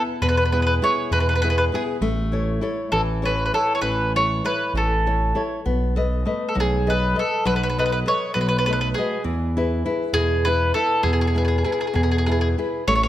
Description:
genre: italian folk, Italian serenade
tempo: 66 BPM (dotted quarters)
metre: 6/8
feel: straight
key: E major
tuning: A4 = 441 Hz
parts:
  - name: nylon-string guitar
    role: accompaniment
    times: 0.0-13.1 s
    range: B2 to D#5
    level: -25 LUFS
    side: left 2 dB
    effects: none
  - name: mandolin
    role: melody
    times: 0.2-13.1 s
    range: G#4 to C#5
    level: -22 LUFS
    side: right 1 dB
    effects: none
  - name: smooth synth bass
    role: bass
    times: 0.2-13.1 s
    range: A1 to E2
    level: -23 LUFS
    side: equal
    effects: none
room: moderate recital hall reverb, RT60 1.6 s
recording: none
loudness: -19 LUFS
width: side -13 dB against mid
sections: 0.0-12.9 A section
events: none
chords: 0.0 E; 2.0 A; 5.6 B7; 9.3 E

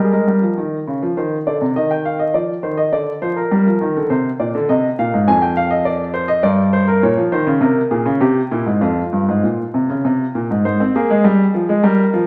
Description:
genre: classical, baroque-style two-part invention for grand piano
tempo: 102 BPM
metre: 3/4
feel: straight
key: F minor from 7.0 s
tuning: A4 = 439 Hz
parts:
  - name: warm baby grand piano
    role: solo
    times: 0.0-12.3 s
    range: F2 to Ab5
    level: -17 LUFS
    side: equal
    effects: none
room: wet stone room reverb, RT60 1.3 s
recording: vinyl crackle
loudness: -17 LUFS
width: mono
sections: 0.0-10.6 A section; 10.6-12.3 B section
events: none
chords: 0.0 Eb7; 1.2 Cmadd9; 1.8 F5/Eb; 2.9 Bb/D; 3.5 Eb5; 4.7 Ab/C; 5.3 Dm7/F; 6.4 Gm; 7.0 Bbm; 7.6 Bbm9; 8.2 C; 8.8 Fm; 10.6 Fm/Ab

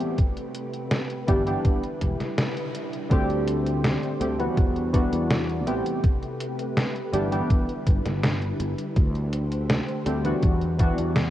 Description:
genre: vaporwave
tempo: 82 BPM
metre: 4/4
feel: straight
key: G major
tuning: A4 = 438 Hz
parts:
  - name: warbly lo-fi synth keys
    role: accompaniment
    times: 0.0-11.3 s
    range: D3 to G4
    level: -27 LUFS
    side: equal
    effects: wide subtle chorus, tape echo
  - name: soft string machine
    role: sustained chords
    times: 0.0-11.3 s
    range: C3 to D5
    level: -32 LUFS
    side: equal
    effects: ensemble chorus
  - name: detuned 8-bit digital drum machine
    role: drums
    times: 0.0-11.3 s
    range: hi-hat, snare drum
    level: -27 LUFS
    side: equal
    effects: none
  - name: electronic kick drum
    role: drums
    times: 0.2-10.9 s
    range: none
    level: -22 LUFS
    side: equal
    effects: none
  - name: sustaining fretless electric bass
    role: bass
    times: 1.3-11.3 s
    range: E1 to E2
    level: -27 LUFS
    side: equal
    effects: tube saturation
room: light reverb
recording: cassette tape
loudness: -22 LUFS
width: side -13 dB against mid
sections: 0.0-3.1 A section; 3.1-11.3 B section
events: band accent 2.4-2.7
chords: 0.0 Am9; 1.3 G6; 3.1 D7sus4; 4.6 Em9; 5.7 Am9; 7.1 G6; 9.0 D7sus4; 10.4 Em9

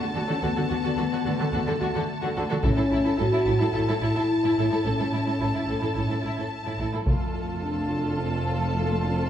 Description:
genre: cinematic, epic orchestral film score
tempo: 108 BPM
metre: 4/4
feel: straight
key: unclear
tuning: A4 = 441 Hz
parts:
  - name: warm symphonic violin section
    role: melody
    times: 0.0-9.3 s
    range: A5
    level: -34 LUFS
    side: left 1 dB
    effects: none
  - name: warm symphonic violin section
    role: second line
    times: 0.0-9.3 s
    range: E4 to A4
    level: -32 LUFS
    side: left 2 dB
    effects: none
  - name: warm symphonic viola section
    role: accompaniment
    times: 0.0-9.3 s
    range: E4 to F#4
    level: -33 LUFS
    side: right 2 dB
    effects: none
  - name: dark French horn section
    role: sustained chords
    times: 0.0-9.3 s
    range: A3 to F#4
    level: -27 LUFS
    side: left 2 dB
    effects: none
  - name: rich symphonic cello section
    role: bass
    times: 0.0-9.3 s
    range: F2 to D3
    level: -31 LUFS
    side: right 2 dB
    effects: none
  - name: warm studio double bass section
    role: bass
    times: 0.1-9.3 s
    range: F1 to D2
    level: -30 LUFS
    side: right 2 dB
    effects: none
  - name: solo taiko drums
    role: drums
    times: 2.6-3.7, 7.1-8.1 s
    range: none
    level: -26 LUFS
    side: equal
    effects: none
room: wet recital hall reverb, RT60 1.7 s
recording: recorded in a church or concert hall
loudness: -23 LUFS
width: side -10 dB against mid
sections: 0.0-9.3 A section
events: none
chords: 0.0 D; 2.6 A; 7.1 F

